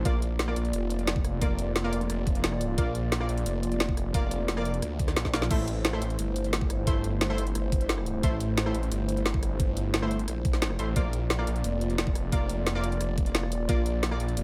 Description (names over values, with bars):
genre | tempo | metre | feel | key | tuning
dark technical drum and bass | 176 BPM | 4/4 | straight | unclear | A4 = 440 Hz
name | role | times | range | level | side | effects
snarling distorted saw bass | bass | 0.0-14.4 s | F1 to D2 | -32 LUFS | equal | sidechain pumping
dark analog pad | sustained chords | 0.1-14.4 s | A3 to D5 | -36 LUFS | equal | chorus, sidechain pumping
orchestra-hit-like synth stab | stabs | 0.1-14.2 s | A3 to D5 | -37 LUFS | equal | built-in reverb, digital delay
drum and bass drum kit | drums | 0.1-14.4 s | crash cymbal, hi-hat, rim click, snare drum | -33 LUFS | equal | overdrive, studio reverb
electronic kick drum | drums | 0.1-13.8 s | none | -30 LUFS | equal | overdrive, studio reverb
room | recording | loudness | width
light reverb, digital ambience | none | -28 LUFS | mono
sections
0.0-14.4 A section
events
drum fill 5.2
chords
0.1 Bb; 5.5 Am; 11.0 Bb